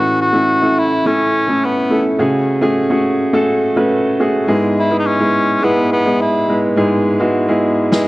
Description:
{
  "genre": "piano-driven pop",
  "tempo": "105 BPM",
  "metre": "4/4",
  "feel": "straight",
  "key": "E major",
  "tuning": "A4 = 436 Hz",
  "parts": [
    { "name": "mellow cor anglais", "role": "melody", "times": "0.0-6.6 s", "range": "B3 to F#4", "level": "-16 LUFS", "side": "left 1 dB", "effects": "none" },
    { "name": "clear upright piano", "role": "accompaniment", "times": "0.0-8.1 s", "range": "G#2 to B4", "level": "-14 LUFS", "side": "equal", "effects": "none" },
    { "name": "snare drum", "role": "drums", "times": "7.9-8.1 s", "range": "none", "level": "-16 LUFS", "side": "left 1 dB", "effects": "none" }
  ],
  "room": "moderate plate reverb, RT60 1.4 s, studio ambience",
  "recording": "worn, warbling old tape, cassette tape, warbly pitch drift",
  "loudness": "-12 LUFS",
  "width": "side -18 dB against mid",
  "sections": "0.0-8.1 A section",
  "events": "drum fill 7.9",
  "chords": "0.0 A; 2.2 F#madd9; 4.5 E/G#"
}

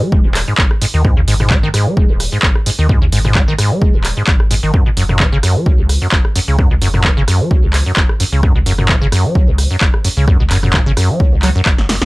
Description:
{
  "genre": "acid house",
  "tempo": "130 BPM",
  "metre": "4/4",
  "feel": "swing 54% on 16ths",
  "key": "unclear",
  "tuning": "A4 = 439 Hz",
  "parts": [
    { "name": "acid bass, square", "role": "riff", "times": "0.0-12.1 s", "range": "F#1 to G#3", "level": "-16 LUFS", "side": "equal", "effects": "tube saturation, lush chorus, sidechain pumping, analog delay" },
    { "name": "saturated sub bass", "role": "bass", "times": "0.1-12.1 s", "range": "D#1 to D#2", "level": "-17 LUFS", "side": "equal", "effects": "sidechain pumping" },
    { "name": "electronic kick drum", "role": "drums", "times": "0.1-11.8 s", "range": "none", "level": "-13 LUFS", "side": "equal", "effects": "none" },
    { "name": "punchy analog drum machine", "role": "drums", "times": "0.3-12.1 s", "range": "handclaps, hi-hat, rim click, snare drum, toms", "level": "-17 LUFS", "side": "equal", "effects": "none" }
  ],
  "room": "little or no reverb",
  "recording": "dry, gritty hardware recording, cassette tape",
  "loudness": "-11 LUFS",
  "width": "side -22 dB against mid",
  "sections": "0.0-12.1 A section",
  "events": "drum fill 11.8",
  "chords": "0.0 G#5; 4.7 F#5"
}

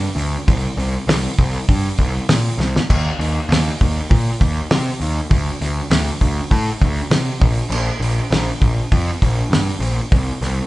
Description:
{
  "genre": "classic rock",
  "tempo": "100 BPM",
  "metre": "4/4",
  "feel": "straight",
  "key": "unclear",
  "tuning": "A4 = 436 Hz",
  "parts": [
    { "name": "fuzz picked electric bass", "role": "bass", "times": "0.0-10.6 s", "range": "Bb1 to C3", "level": "-19 LUFS", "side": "equal", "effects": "overdrive" },
    { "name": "damped 70s drum kit", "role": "drums", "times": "0.2-10.6 s", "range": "crash cymbal, hi-hat, kick drum, snare drum", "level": "-18 LUFS", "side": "equal", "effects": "none" }
  ],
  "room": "light reverb",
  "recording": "band playing live in one room, nothing above 10.9 kHz",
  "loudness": "-15 LUFS",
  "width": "side -18 dB against mid",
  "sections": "0.0-10.7 A section",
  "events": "drum fill 2.6-2.9",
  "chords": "none"
}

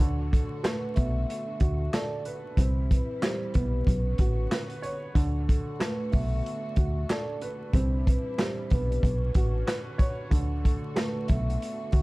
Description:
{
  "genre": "hip hop, boom-bap hip-hop",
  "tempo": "93 BPM",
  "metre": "4/4",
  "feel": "swing 60% on 16ths",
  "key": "D major",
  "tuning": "A4 = 440 Hz",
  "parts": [
    { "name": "dark upright piano", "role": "accompaniment", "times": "0.0-12.0 s", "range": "D3 to C#5", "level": "-34 LUFS", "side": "right 2 dB", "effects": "cassette tape" },
    { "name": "muted studio string section", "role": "sustained chords", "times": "0.0-12.0 s", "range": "D3 to F#4", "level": "-42 LUFS", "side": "left 1 dB", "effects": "none" },
    { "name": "deep dub fingered electric bass", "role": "bass", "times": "0.0-12.0 s", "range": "A1 to D2", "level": "-28 LUFS", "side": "equal", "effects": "none" },
    { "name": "vintage drum kit", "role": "drums", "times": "0.0-12.0 s", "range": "handclaps, hi-hat, kick drum, snare drum", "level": "-27 LUFS", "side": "equal", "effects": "none" },
    { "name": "vibraphone with soft mallets", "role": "melody", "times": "0.3-12.0 s", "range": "A4 to E5", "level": "-37 LUFS", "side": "moving between left 2 dB and right 4 dB", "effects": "auto-pan" }
  ],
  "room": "small room ambience",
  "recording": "dark, warm production, vinyl crackle",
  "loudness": "-25 LUFS",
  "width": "side -22 dB against mid",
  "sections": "0.0-12.0 A section",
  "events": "none",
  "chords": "0.0 D6; 2.6 Cmaj7; 3.9 Bmadd9; 5.2 D6; 7.7 Cmaj7; 9.0 Bmadd9; 10.3 D6"
}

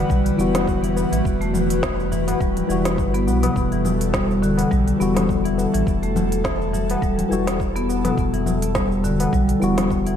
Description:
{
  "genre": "organic downtempo",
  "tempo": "104 BPM",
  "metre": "4/4",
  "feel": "swing 56% on 16ths",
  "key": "E minor",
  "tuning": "A4 = 440 Hz",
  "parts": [
    { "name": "tine electric piano", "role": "accompaniment", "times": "0.0-10.2 s", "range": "E3 to F#4", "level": "-25 LUFS", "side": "left 3 dB", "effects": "analog chorus, sidechain pumping, ping-pong delay" },
    { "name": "airy breathy pad", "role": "sustained chords", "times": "0.0-10.2 s", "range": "E3 to B4", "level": "-26 LUFS", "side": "right 1 dB", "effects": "chorus, sidechain pumping" },
    { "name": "warm sub bass", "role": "bass", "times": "0.0-10.2 s", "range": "D1 to B1", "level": "-25 LUFS", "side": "equal", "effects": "none" },
    { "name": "marimba with medium hard mallets", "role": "arpeggios", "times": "0.1-10.2 s", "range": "B2 to B3", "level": "-24 LUFS", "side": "left 1 dB", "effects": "ping-pong delay" },
    { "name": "electronic kick drum", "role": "drums", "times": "0.1-10.0 s", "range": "none", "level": "-25 LUFS", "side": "equal", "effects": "none" },
    { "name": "organic electronic drum kit", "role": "drums", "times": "0.1-10.2 s", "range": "cabasa, congas, hi-hat, snare drum", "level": "-27 LUFS", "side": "left 1 dB", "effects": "overdrive" },
    { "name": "tabla", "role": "percussion", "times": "0.5-9.9 s", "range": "none", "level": "-32 LUFS", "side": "left 3 dB", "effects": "none" }
  ],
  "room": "moderate lush hall reverb, RT60 2.1 s",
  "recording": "dreamy mix soaked in reverb",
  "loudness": "-18 LUFS",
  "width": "side -8 dB against mid",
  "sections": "0.0-10.2 A section",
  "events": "none",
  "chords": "0.0 Emadd9"
}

